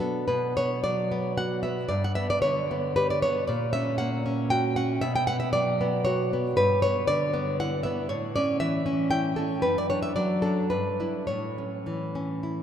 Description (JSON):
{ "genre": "romantic piece for solo classical guitar", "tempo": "101-121 BPM", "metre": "3/4", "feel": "rubato", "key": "B minor", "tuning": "A4 = 440 Hz", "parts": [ { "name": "nylon-string guitar", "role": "solo", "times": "0.0-12.6 s", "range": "F#2 to G5", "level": "-24 LUFS", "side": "equal", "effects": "none" } ], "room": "wet cathedral reverb, RT60 4.9 s", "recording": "in a vast, echoing space", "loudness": "-24 LUFS", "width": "side -9 dB against mid", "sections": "0.3-12.6 A section", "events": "none", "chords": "0.3 Bm; 1.9 G; 3.5 F#/A#; 5.0 Bm; 6.6 Em7/G; 8.1 A; 9.7 D/F#; 10.7 Em7/G; 11.3 A", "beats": "| 0.28 0.83 1.37 | 1.89 2.42 2.96 | 3.48 4.00 4.52 | 5.03 5.54 6.06 | 6.58 7.08 7.58 | 8.10 8.61 9.12 | 9.65 10.18 10.71 | 11.28 11.86 12.43" }